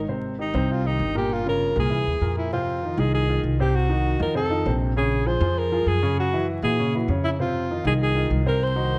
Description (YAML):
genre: Afro-Cuban jazz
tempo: 197 BPM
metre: 4/4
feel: straight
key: F minor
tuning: A4 = 440 Hz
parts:
  - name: warm concert grand piano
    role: accompaniment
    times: 0.0-9.0 s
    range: Bb2 to Db5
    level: -29 LUFS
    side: equal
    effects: none
  - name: upright bass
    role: bass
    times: 0.0-9.0 s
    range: G1 to Bb2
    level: -27 LUFS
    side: equal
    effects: none
  - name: breathy alto saxophone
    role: melody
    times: 0.4-9.0 s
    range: Eb4 to C5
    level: -28 LUFS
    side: equal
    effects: none
room: moderate recital hall reverb, RT60 1.5 s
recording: dark, warm production, vinyl crackle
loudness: -23 LUFS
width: mono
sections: 0.0-2.5 A section; 2.5-9.0 B section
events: none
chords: 0.1 Abmaj7; 1.3 Gm7b5; 1.9 C7alt; 2.5 Fm7; 3.7 Cdim; 4.3 F7; 5.0 Bbm9; 6.2 Gb9; 7.4 Fm7